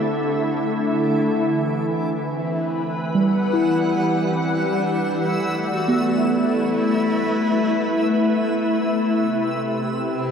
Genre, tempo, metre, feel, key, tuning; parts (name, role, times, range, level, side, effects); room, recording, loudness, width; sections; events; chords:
ambient; 61 BPM; 4/4; straight; E minor; A4 = 439 Hz
soft additive organ-like pad; sustained chords; 0.0-10.3 s; C3 to F#5; -20 LUFS; left 1 dB; ensemble chorus, built-in reverb
backwards swelling texture; texture; 1.2-10.3 s; D6 to E6; -35 LUFS; left 1 dB; built-in reverb
dark cello; melody; 2.3-10.3 s; B3 to F#4; -30 LUFS; equal; ping-pong delay
muted felt-like synth keys; arpeggios; 3.1-9.3 s; G3 to E4; -24 LUFS; right 1 dB; chorus, ping-pong delay
wet huge ambient reverb, RT60 7.0 s; dark, warm production; -18 LUFS; side -7 dB against mid
0.0-1.3 A section; 1.3-10.3 B section
fade-in on cello 1.3-10.3
0.0 Dsus2; 1.3 Em; 5.2 A5; 9.1 Cmaj7